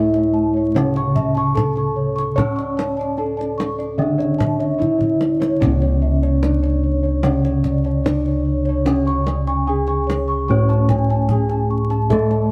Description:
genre	Javanese gamelan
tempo	74 BPM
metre	4/4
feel	straight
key	C# pelog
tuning	A4 = 439 Hz
part	gamelan-type bronze metallophone	melody	0.0-12.5 s	C#4 to C#5	-24 LUFS	equal	none
part	gamelan-type bronze metallophone	accompaniment	0.0-12.5 s	C#3 to C#4	-26 LUFS	equal	none
part	gamelan-type bossed gongs	arpeggios	0.0-12.5 s	C#5 to C#6	-30 LUFS	equal	none
part	gamelan-type bronze metallophone	arpeggios	0.0-12.5 s	C#5 to C#6	-30 LUFS	equal	none
part	gamelan-type bossed gongs	bass	0.0-12.5 s	C#2 to C#5	-23 LUFS	equal	none
part	kendang	percussion	0.1-12.4 s	none	-26 LUFS	equal	none
room	light reverb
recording	vinyl crackle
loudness	-19 LUFS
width	mono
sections	0.0-12.5 A section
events	drum fill 4.8-5.6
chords	none

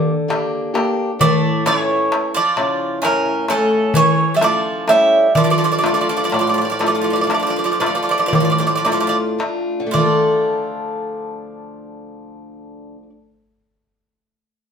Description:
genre	greek folk, Greek bouzouki band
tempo	108-132 BPM (eighths)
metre	9/8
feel	straight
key	D harmonic minor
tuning	A4 = 439 Hz
part	picked old ladder-braced acoustic guitar	accompaniment	0.0-13.2 s	A2 to A4	-21 LUFS	left 2 dB	none
part	darbuka	percussion	0.3-10.5 s	none	-20 LUFS	left 1 dB	none
part	Greek bouzouki	melody	1.2-13.1 s	A4 to E5	-17 LUFS	right 2 dB	none
part	Greek bouzouki	second line	1.2-13.1 s	C#3 to A3	-24 LUFS	right 3 dB	none
room	wet studio reverb, RT60 0.8 s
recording	band playing live in one room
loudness	-15 LUFS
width	side -7 dB against mid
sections	0.0-9.9 A section; 9.9-14.7 B section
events	slowing down 2.1-9.9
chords	0.0 Gm; 1.2 A; 5.3 Dm

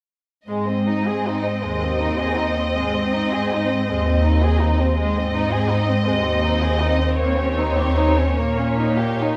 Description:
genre	classical, slow romantic movement for string orchestra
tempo	53 BPM (dotted quarters)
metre	6/8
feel	uneven beats, rubato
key	Ab major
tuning	A4 = 438 Hz
part	warm studio violin section	melody	0.5-9.4 s	Db5 to Eb5	-28 LUFS	equal	none
part	dark studio violin section	second line	0.5-9.4 s	Ab3 to Ab4	-27 LUFS	equal	none
part	warm studio viola section	accompaniment	0.5-9.4 s	Bb3 to C4	-28 LUFS	equal	none
part	rich studio cello section	bass	0.5-9.4 s	Eb2 to Bb2	-23 LUFS	equal	none
room	wet recital hall reverb, RT60 1.4 s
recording	recorded in a church or concert hall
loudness	-20 LUFS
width	mono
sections	0.5-9.4 A section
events	none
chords	0.5 Ab; 7.2 Eb7(no3)

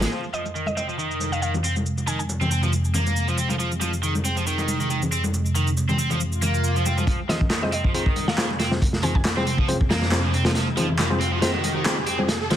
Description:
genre	breakbeat, breaks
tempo	138 BPM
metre	4/4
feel	swing 54% on 16ths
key	F minor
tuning	A4 = 440 Hz
part	phased analog pad	sustained chords	0.0-12.6 s	F2 to Bb4	-25 LUFS	equal	phaser, chorus, sidechain pumping
part	cranked stack guitar	riff	0.0-12.6 s	Eb3 to C4	-27 LUFS	right 1 dB	overdrive, tube saturation, low-pass filter, ping-pong delay
part	crunchy breakbeat drum kit	drums	0.0-0.1, 7.1-12.6 s	hi-hat, kick drum, snare drum	-23 LUFS	equal	none
part	electronic shaker and handclaps	drums	0.0-12.0 s	none	-30 LUFS	equal	overdrive, high-pass filter on perc, low-pass filter on perc, high-pass filter on snare, low-pass filter on snare, high-pass filter on room, low-pass filter on room
part	mallet-like synth pluck	melody	0.3-2.3, 7.3-9.2 s	Eb5 to Ab5	-32 LUFS	equal	chorus, small speaker sound, vintage 12-bit sampler grit, ping-pong delay
part	congas	percussion	0.5-12.6 s	none	-30 LUFS	left 2 dB	none
part	swell and riser	sound effects	6.3-12.6 s	none	-32 LUFS	right 1 dB	none
part	tine electric piano	stabs	7.3-12.6 s	C4 to C5	-29 LUFS	left 2 dB	low-pass filter, ping-pong delay
room	moderate studio reverb, RT60 0.5 s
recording	dense, heavily limited modern master, vinyl crackle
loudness	-20 LUFS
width	side -11 dB against mid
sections	0.1-7.1 A section; 7.1-12.6 B section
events	filter sweep on analog synth pad 0.1-7.1; swell 6.3-7.1; build-up 7.1-12.6; riser 7.1-12.6; drum fill 10.6-12.6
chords	0.1 Fm

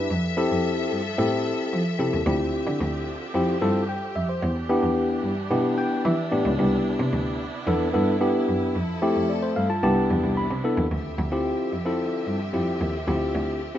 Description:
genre	funk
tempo	111 BPM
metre	4/4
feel	straight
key	D dorian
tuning	A4 = 439 Hz
part	tine electric piano	accompaniment	0.0-13.8 s	A3 to B5	-24 LUFS	left 1 dB	none
part	rich studio string section	sustained chords	0.0-13.8 s	C3 to E5	-33 LUFS	equal	none
part	rich cello	bass	0.0-13.6 s	C2 to F3	-27 LUFS	equal	none
room	light reverb, small room ambience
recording	rough home demo mix, nothing above 7.8 kHz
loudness	-22 LUFS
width	side -11 dB against mid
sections	0.0-10.9 A section; 10.9-13.8 B section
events	tine electric piano fill 5.5-6.6, 9.3-10.9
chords	0.1 Fmaj7; 2.3 Dm11; 4.4 Em7; 6.6 Cmaj9; 8.8 Fmaj7; 9.8 Cmaj9; 10.9 Dm11

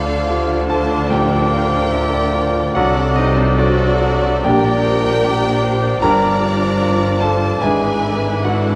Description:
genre	classical, romantic movement for piano and orchestra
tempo	68-78 BPM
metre	4/4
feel	rubato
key	D minor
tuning	A4 = 435 Hz
part	clear concert grand piano	melody	0.0-8.8 s	Bb1 to Bb5	-21 LUFS	equal	none
part	rich studio violin section	melody	0.0-8.8 s	C5 to Bb5	-29 LUFS	equal	none
part	clear clarinet	second line	0.0-8.8 s	F4 to F5	-28 LUFS	equal	none
part	rich studio violin section	second line	0.0-8.8 s	Eb4 to D5	-29 LUFS	equal	none
part	small flute group	second line	0.0-8.8 s	D6	-28 LUFS	equal	none
part	mellow bassoon	accompaniment	0.0-8.8 s	E3 to G3	-28 LUFS	equal	none
part	warm studio viola section	accompaniment	0.0-8.8 s	D4 to G4	-27 LUFS	equal	none
part	warm chamber double bass section	bass	0.0-8.8 s	G1 to D2	-24 LUFS	equal	none
part	warm studio cello section	bass	0.0-8.8 s	G2 to D3	-26 LUFS	equal	none
part	timpani	percussion	0.0-0.7 s	none	barely audible	none	none
part	mellow French horn section	sustained chords	1.1-7.9 s	E3 to D4	-28 LUFS	equal	none
room	moderate scoring stage reverb, RT60 1.6 s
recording	vinyl crackle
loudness	-16 LUFS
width	mono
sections	0.0-8.8 A section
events	none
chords	0.0 Dm; 2.8 D7/C; 4.4 Gm/Bb; 6.0 Gm7; 7.6 E7/G#

